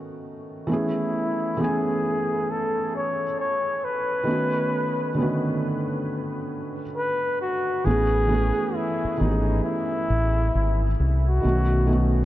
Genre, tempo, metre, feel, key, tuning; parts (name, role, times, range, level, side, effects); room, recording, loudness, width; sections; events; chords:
hip hop; 67 BPM; 4/4; swing 63% on 16ths; A lydian; A4 = 440 Hz
felt-muted upright piano; accompaniment; 0.0-12.2 s; D3 to G#5; -26 LUFS; right 1 dB; low-pass filter
breathy flugelhorn; melody; 0.7-12.1 s; D#4 to C#5; -26 LUFS; left 1 dB; low-pass filter, tape echo
deep dub fingered electric bass; bass; 7.9-12.2 s; G#1 to C2; -22 LUFS; equal
moderate huge ambient reverb, RT60 8.5 s; dreamy mix soaked in reverb, cassette tape, nothing above 8.0 kHz; -22 LUFS; side -14 dB against mid
0.0-7.9 A section; 7.9-12.2 B section
filter sweep 0.0-7.9
0.0 B7; 0.7 Amaj7; 4.3 B7; 7.9 Amaj7; 11.4 B7